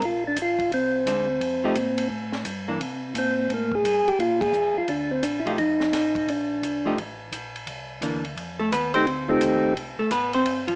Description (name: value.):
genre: soul jazz organ trio.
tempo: 172 BPM.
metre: 4/4.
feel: swing 64% on 8ths.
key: F mixolydian.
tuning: A4 = 437 Hz.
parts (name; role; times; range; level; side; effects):
percussive tonewheel organ; melody; 0.0-9.7 s; A3 to Ab4; -25 LUFS; equal; slow rotary speaker.
mellow tonewheel organ; bass; 0.0-10.8 s; G1 to C3; -38 LUFS; equal; chorus vibrato, slow rotary speaker.
compact cocktail drum kit; drums; 0.0-10.7 s; hi-hat, kick drum, ride cymbal, snare drum; -36 LUFS; equal; none.
hollow-body jazz guitar; accompaniment; 1.1-2.8, 5.5-10.8 s; E3 to C5; -27 LUFS; equal; none.
room: moderate large studio reverb, RT60 1.2 s.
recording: small speaker sound.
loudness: -25 LUFS.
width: mono.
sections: 0.0-8.4 A section; 8.4-10.8 B section.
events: band accent 4.4; hollow-body jazz guitar solo 8.4-10.8.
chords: 0.0 Bb9; 1.4 Fadd9; 2.8 C5; 4.2 Bb7; 5.6 F7; 6.3 Bbadd9; 7.0 N.C.; 7.7 C9; 8.4 F9.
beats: | 0.01 0.36 0.71 1.06 | 1.41 1.75 2.10 2.45 | 2.80 3.15 3.50 3.85 | 4.19 4.54 4.89 5.24 | 5.59 5.93 6.28 6.63 | 6.98 7.33 7.68 8.02 | 8.37 8.72 9.07 9.41 | 9.76 10.11 10.46.